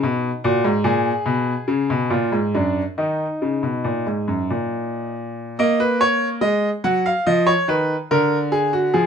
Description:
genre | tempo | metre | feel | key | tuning
classical, baroque-style two-part invention for grand piano | 71 BPM | 3/4 | uneven beats | Eb minor | A4 = 440 Hz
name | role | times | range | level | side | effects
bright grand piano | solo | 0.0-9.1 s | Gb2 to Gb5 | -18 LUFS | equal | none
room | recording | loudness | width
light reverb | close, detailed microphones | -18 LUFS | side -7 dB against mid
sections
0.0-5.6 A section; 5.6-9.1 B section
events
none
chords
0.4 Gbadd9/Ab; 1.3 Abm/Cb; 2.1 Bb7; 3.0 Eb5; 5.6 Ebm/Bb; 7.3 Db9; 8.1 Bb7/D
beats
| 0.44 1.26 2.11 | 2.97 3.84 4.71 | 5.59 6.43 7.27 | 8.10 8.93

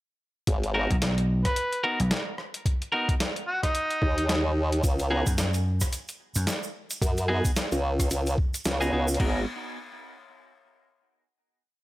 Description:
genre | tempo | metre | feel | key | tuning
glitch hop | 110 BPM | 4/4 | swing 58% on 16ths | G# minor | A4 = 440 Hz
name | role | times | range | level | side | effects
formant-sweep wobble bass | bass | 0.5-9.5 s | G#1 to F#2 | -25 LUFS | equal | chorus
boom bap sampler-style drum kit | drums | 0.5-9.3 s | crash cymbal, hi-hat, rim click, snare drum | -31 LUFS | equal | none
electronic kick drum | drums | 0.5-9.3 s | none | -26 LUFS | equal | none
clean electric guitar | stabs | 0.7-9.4 s | B3 to A#4 | -30 LUFS | equal | sidechain pumping, tape echo
vintage slap bass | bass | 0.9-6.5 s | B1 to F#2 | -25 LUFS | equal | none
mellow harmonica | melody | 1.5-4.4 s | D#4 to B4 | -30 LUFS | equal | tape echo
tube shaker | percussion | 4.8-9.2 s | none | -36 LUFS | right 3 dB | none
room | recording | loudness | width
digital ambience | none | -24 LUFS | side -17 dB against mid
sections
0.5-9.2 drop; 9.2-11.4 final chord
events
drop 0.5-9.2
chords
0.5 G#m9; 4.8 C#9sus4; 9.2 G#m9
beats
| 0.47 1.02 1.56 2.11 | 2.65 3.20 3.75 4.29 | 4.84 5.38 5.93 6.47 | 7.02 7.56 8.11 8.65 | 9.20

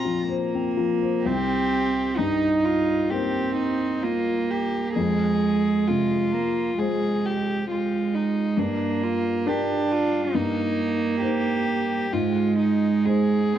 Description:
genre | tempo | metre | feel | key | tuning
neoclassical piano and strings | 66 BPM | 4/4 | uneven beats, rubato | C minor | A4 = 442 Hz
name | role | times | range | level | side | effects
rich violin | melody | 0.0-13.6 s | D4 to Bb5 | -27 LUFS | left 3 dB | cassette tape, plate reverb, analog delay
warm cello | second line | 0.0-13.6 s | Ab3 to F4 | -24 LUFS | right 5 dB | cassette tape, plate reverb
felt-muted upright piano | accompaniment | 0.0-13.6 s | C2 to C5 | -28 LUFS | left 6 dB | cassette tape
room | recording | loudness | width
wet studio reverb, RT60 0.6 s | home recording on cassette | -21 LUFS | side -10 dB against mid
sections
0.0-1.3 A section; 1.3-13.6 A section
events
none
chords
0.0 Bbsus2; 1.3 Cm7; 5.0 Fm; 8.6 Gm; 10.3 Cm7/G; 12.1 Ab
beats
0.28 | 1.25 2.19 3.11 4.03 | 4.96 5.88 6.79 7.68 | 8.56 9.45 10.34 11.21 | 12.12 13.06

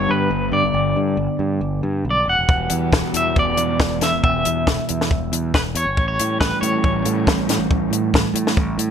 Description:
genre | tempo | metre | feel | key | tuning
indie rock | 138 BPM | 4/4 | straight | unclear | A4 = 439 Hz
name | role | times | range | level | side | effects
clean electric guitar | melody | 0.0-8.9 s | B4 to F#5 | -22 LUFS | equal | tremolo, slapback echo
crunchy overdriven guitar | riff | 0.0-8.9 s | E2 to G4 | -23 LUFS | right 1 dB | none
growling fingered electric bass | bass | 0.0-8.9 s | E1 to A2 | -24 LUFS | equal | overdrive
compact cocktail drum kit | drums | 2.5-8.9 s | hi-hat, kick drum, snare drum | -19 LUFS | left 1 dB | none
room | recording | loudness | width
light reverb | none | -17 LUFS | side -8 dB against mid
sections
0.0-8.9 A section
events
none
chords
0.0 G; 2.3 Emadd9; 6.0 A7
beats
0.31 | 0.74 1.18 1.62 2.05 | 2.49 2.93 3.36 3.80 | 4.23 4.67 5.11 5.54 | 5.97 6.41 6.84 7.28 | 7.71 8.14 8.57

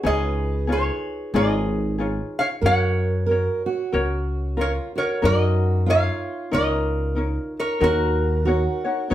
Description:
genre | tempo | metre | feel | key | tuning
Hawaiian | 93 BPM | 4/4 | swing 60% on 8ths | F# major | A4 = 440 Hz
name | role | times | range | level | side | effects
metal-body resonator slide guitar | melody | 0.0-9.1 s | F#4 to F#5 | -24 LUFS | equal | none
fingerpicked steel-string acoustic guitar | second line | 0.0-9.1 s | E#4 to B4 | -29 LUFS | right 5 dB | none
ukulele | accompaniment | 0.0-9.1 s | D#4 to C#5 | -26 LUFS | left 2 dB | none
upright bass | bass | 0.0-9.1 s | G#1 to F#2 | -23 LUFS | equal | none
room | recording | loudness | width
wet studio reverb, RT60 0.5 s | heard from further back in the room | -20 LUFS | side -12 dB against mid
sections
0.0-5.2 A section; 5.2-9.1 A section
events
none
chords
0.0 C#add9; 2.6 F#maj7; 5.2 F#6; 7.8 D#m7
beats
| 0.04 0.69 1.33 1.98 | 2.63 3.28 3.93 4.58 | 5.22 5.87 6.52 7.17 | 7.82 8.46 9.11

